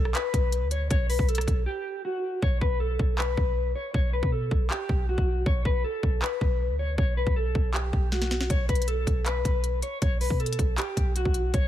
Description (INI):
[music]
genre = hip hop, trap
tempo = 158 BPM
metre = 4/4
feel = half-time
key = B minor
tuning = A4 = 440 Hz
[part]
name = mellow electric guitar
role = melody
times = 0.0-11.7 s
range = F#4 to C#5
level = -30 LUFS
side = left 2 dB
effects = harmonic tremolo
[part]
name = clean 808-style bass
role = bass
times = 0.0-11.7 s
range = B1 to B2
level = -27 LUFS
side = equal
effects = none
[part]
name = trap drum kit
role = drums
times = 0.1-11.6 s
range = handclaps, hi-hat, kick drum, rim click, snare drum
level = -27 LUFS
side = equal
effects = none
[sound]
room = little or no reverb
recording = none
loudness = -24 LUFS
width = side -12 dB against mid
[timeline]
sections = 0.0-2.4 A section; 2.4-11.7 B section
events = break 1.7-2.4; hi-hats muted 2.4-8.5; drum fill 8.1-8.5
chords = 0.0 N.C.; 2.4 B5; 5.5 N.C.; 8.5 B5